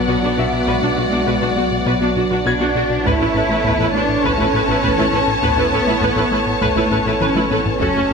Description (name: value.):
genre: cinematic, hybrid orchestral and electronic film score.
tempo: 101 BPM.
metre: 4/4.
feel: straight.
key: unclear.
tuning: A4 = 439 Hz.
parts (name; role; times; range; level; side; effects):
warm symphonic violin section; second line; 0.0-8.1 s; C#5 to A5; -22 LUFS; left 4 dB; none.
chorused pulse-width pad; sustained chords; 0.0-8.1 s; E3 to D5; -22 LUFS; equal; none.
rubbery square bass; riff; 0.0-8.1 s; F#2 to B3; -24 LUFS; left 4 dB; none.
punchy sub bass; bass; 0.0-8.1 s; F#1 to B1; -30 LUFS; equal; none.
rich symphonic cello section; bass; 0.0-8.1 s; F#3 to E4; -22 LUFS; right 3 dB; none.
bright concert grand piano; texture; 0.0-7.8 s; A4 to G#6; -29 LUFS; left 4 dB; tape echo.
rich symphonic viola section; accompaniment; 0.1-8.0 s; C#4 to B4; -22 LUFS; right 1 dB; none.
thumb-piano-like synth pluck; arpeggios; 0.1-8.1 s; F#3 to B4; -28 LUFS; right 2 dB; none.
rich studio double bass section; bass; 0.1-8.1 s; F#1 to B1; -29 LUFS; right 4 dB; none.
taiko ensemble; drums; 3.1-8.1 s; none; -27 LUFS; equal; none.
room: moderate scoring stage reverb, RT60 1.5 s.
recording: none.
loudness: -14 LUFS.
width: side -5 dB against mid.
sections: 0.0-8.1 A section.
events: drum fill 7.2-7.8.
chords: 0.0 Bm; 3.1 Aadd9.